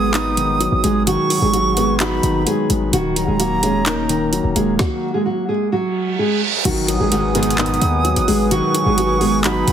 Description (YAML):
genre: hip hop, trap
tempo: 129 BPM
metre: 4/4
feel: half-time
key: G# minor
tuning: A4 = 440 Hz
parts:
  - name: nylon-string guitar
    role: melody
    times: 0.0-9.7 s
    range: F#3 to B4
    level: -20 LUFS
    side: right 3 dB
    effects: none
  - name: breathy bright concert flute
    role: second line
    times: 0.0-9.7 s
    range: A#5 to D#6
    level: -22 LUFS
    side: right 4 dB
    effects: ping-pong delay
  - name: felt-muted upright piano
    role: accompaniment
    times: 0.0-9.7 s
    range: D#3 to D#4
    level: -21 LUFS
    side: left 5 dB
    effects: none
  - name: hard-hitting 808-style bass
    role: bass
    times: 0.0-9.7 s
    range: D#1 to D#2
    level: -22 LUFS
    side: equal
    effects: none
  - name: trap drum kit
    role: drums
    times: 0.1-9.7 s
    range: crash cymbal, handclaps, hi-hat, kick drum, snare drum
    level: -22 LUFS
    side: right 1 dB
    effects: none
  - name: reverse cymbal and impact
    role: sound effects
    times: 5.9-8.5 s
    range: none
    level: -25 LUFS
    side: right 5 dB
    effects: none
  - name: hollow soft pad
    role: sustained chords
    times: 6.9-9.7 s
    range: B4 to D#6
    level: -26 LUFS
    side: left 2 dB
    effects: chorus
  - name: big bright polysynth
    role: stabs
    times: 7.1-7.8 s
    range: B1 to D#3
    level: -25 LUFS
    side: left 2 dB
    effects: phaser
room: light reverb, digital ambience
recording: heavily compressed radio sound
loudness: -15 LUFS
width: side -9 dB against mid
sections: 0.0-6.7 A section; 6.7-9.7 B section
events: reverse cymbal 5.9-6.7; impact 6.7-8.5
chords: 0.0 G#m7; 2.9 D#m7; 6.7 G#m7